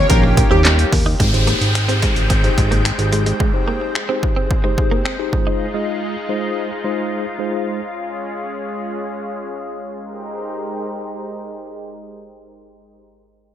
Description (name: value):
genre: dance-pop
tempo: 109 BPM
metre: 4/4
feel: straight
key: Ab major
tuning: A4 = 440 Hz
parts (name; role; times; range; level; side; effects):
- plucky unison lead; melody; 0.0-1.0 s; G4 to Bb4; -20 LUFS; right 2 dB; analog chorus, sidechain pumping, ping-pong delay
- lush unison pad; sustained chords; 0.0-13.0 s; Eb3 to G5; -26 LUFS; left 1 dB; chorus, sidechain pumping, low-pass filter
- direct-recorded clean electric guitar; riff; 0.0-5.6 s; Ab3 to Eb4; -25 LUFS; right 4 dB; wide subtle chorus, low-pass filter
- fat analog bass; bass; 0.0-3.3 s; Ab1 to Eb2; -17 LUFS; equal; sidechain pumping
- mellow tine electric piano; accompaniment; 0.1-7.8 s; Ab3 to Eb5; -23 LUFS; left 2 dB; medium stereo tremolo, low-pass filter
- punchy analog drum machine; drums; 0.1-5.5 s; finger snaps, handclaps, hi-hat, kick drum, snare drum; -18 LUFS; equal; gated reverb
- downlifter; sound effects; 1.2-5.6 s; none; -24 LUFS; equal; none
room: light reverb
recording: bright 1980s-style digital production, faint mains hum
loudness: -16 LUFS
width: side -10 dB against mid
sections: 0.0-1.2 A section; 1.2-10.0 B section; 10.0-12.2 C section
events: drop 0.0-1.2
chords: 0.0 Eb7; 1.2 Abmaj7; 5.3 Fm7/Ab; 7.8 Db/Ab; 10.0 Abmaj7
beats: 0.10 0.65 | 1.20 1.75 2.30 2.85 | 3.40 3.95 4.50 5.05 | 5.60 6.15 6.70 7.25 | 7.80 8.35 8.90 9.46 | 10.01 10.56 11.11 11.66